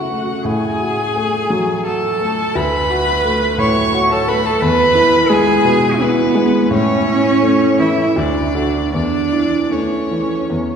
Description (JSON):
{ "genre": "classical, slow romantic movement for piano trio", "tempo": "76-89 BPM", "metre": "3/4", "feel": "rubato", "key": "A major", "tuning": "A4 = 440 Hz", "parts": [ { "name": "muted violin", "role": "melody", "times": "0.0-10.8 s", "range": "B4 to C#6", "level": "-21 LUFS", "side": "left 5 dB", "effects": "none" }, { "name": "muted cello", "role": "second line", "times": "0.0-10.8 s", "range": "B3 to C#5", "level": "-17 LUFS", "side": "right 3 dB", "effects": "none" }, { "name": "warm baby grand piano", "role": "accompaniment", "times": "0.0-10.8 s", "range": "D2 to A4", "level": "-17 LUFS", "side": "equal", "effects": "none" } ], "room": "wet concert hall reverb, RT60 2.3 s", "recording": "heard from further back in the room", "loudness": "-13 LUFS", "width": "side -7 dB against mid", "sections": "0.0-10.8 A section", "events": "none", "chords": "0.5 F#m/A; 2.6 Bm7/D; 4.6 E; 6.7 A; 8.2 D; 8.9 A/E" }